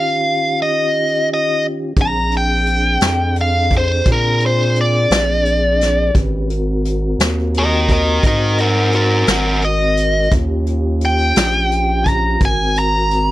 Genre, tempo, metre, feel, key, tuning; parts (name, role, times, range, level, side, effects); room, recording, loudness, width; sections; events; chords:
slow blues; 57 BPM (dotted quarters); 12/8; straight; A4 = 438 Hz
biting lead guitar; melody; 0.0-13.3 s; Gb4 to Bb5; -16 LUFS; equal; overdrive, plate reverb
mellow tonewheel organ; sustained chords; 0.0-13.3 s; Eb3 to Cb5; -23 LUFS; equal; fast rotary speaker, plate reverb
saturated sub bass; bass; 2.0-13.3 s; Ab1 to Bb2; -18 LUFS; equal
vintage brush drum kit; drums; 2.0-13.3 s; hi-hat, kick drum, snare drum; -18 LUFS; equal
light reverb; -13 LUFS; side -15 dB against mid
0.0-13.3 A section
0.0 Eb9; 2.0 Bb9; 6.2 Ab9; 10.3 Eb9; 12.4 Ab9